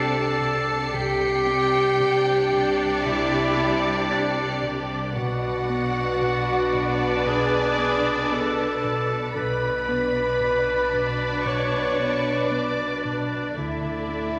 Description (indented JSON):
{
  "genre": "cinematic",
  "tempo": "57 BPM",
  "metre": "4/4",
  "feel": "straight",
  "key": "unclear",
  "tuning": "A4 = 440 Hz",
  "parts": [
    { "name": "warm studio violin section", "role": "melody", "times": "0.0-14.4 s", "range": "D5", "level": "-32 LUFS", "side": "equal", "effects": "none" },
    { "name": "bright clarinet", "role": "second line", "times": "0.0-14.4 s", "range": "D4 to D5", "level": "-32 LUFS", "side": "equal", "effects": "none" },
    { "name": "rich studio violin section", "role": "second line", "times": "0.0-14.4 s", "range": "D5 to D6", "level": "-34 LUFS", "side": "equal", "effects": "none" },
    { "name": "rich studio viola section", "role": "accompaniment", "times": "0.0-14.4 s", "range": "D4 to B4", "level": "-31 LUFS", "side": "equal", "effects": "none" },
    { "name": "bright trombone section", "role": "sustained chords", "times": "0.0-14.4 s", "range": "A2 to D4", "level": "-38 LUFS", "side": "equal", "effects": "none" },
    { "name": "warm French horn section", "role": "sustained chords", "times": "0.0-14.4 s", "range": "D4 to D5", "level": "-28 LUFS", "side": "equal", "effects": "none" },
    { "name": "rubbery square bass", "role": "riff", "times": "0.0-14.4 s", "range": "B2 to D4", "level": "-36 LUFS", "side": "equal", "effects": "none" },
    { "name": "rich studio double bass section", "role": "bass", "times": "0.0-14.4 s", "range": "B1 to D2", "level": "-39 LUFS", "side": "equal", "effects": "none" },
    { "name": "warm studio cello section", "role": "bass", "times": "0.0-14.4 s", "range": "B2 to D3", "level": "-36 LUFS", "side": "equal", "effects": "none" },
    { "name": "punchy sub bass", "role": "drone", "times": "0.0-14.4 s", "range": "B1 to D2", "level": "-45 LUFS", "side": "equal", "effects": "none" },
    { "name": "rich studio violin section", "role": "texture", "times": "0.0-4.6 s", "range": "C7 to C#7", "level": "-36 LUFS", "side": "equal", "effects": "none" },
    { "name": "warm concert grand piano", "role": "texture", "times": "0.0-13.6 s", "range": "none", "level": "barely audible", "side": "none", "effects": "none" }
  ],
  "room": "wet scoring stage reverb, RT60 1.7 s",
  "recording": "none",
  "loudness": "-23 LUFS",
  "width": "mono",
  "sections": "0.0-14.4 A section",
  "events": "none",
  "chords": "0.0 Cadd9; 5.1 Bm; 13.6 D5"
}